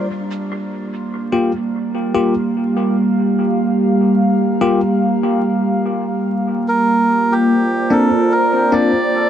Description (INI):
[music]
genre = ambient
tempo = 73 BPM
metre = 4/4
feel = swing 56% on 16ths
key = G minor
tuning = A4 = 442 Hz
[part]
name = airy breathy pad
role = sustained chords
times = 0.0-9.3 s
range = G3 to F5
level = -18 LUFS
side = left 1 dB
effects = chorus
[part]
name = drifting glass-harmonics texture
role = texture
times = 0.6-9.3 s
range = Bb3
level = -20 LUFS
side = right 5 dB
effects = chorus, built-in reverb
[part]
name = bell-like tine electric piano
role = stabs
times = 1.3-8.9 s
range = Bb3 to G4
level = -20 LUFS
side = left 3 dB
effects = wide subtle chorus, dub echo
[part]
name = melodica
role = melody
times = 6.7-9.3 s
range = G4 to D5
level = -18 LUFS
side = right 1 dB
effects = dub echo
[sound]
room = light reverb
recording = dark, warm production, vinyl crackle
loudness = -14 LUFS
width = side -10 dB against mid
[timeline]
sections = 0.1-9.3 A section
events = none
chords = 0.0 Gm7; 6.7 Bbadd9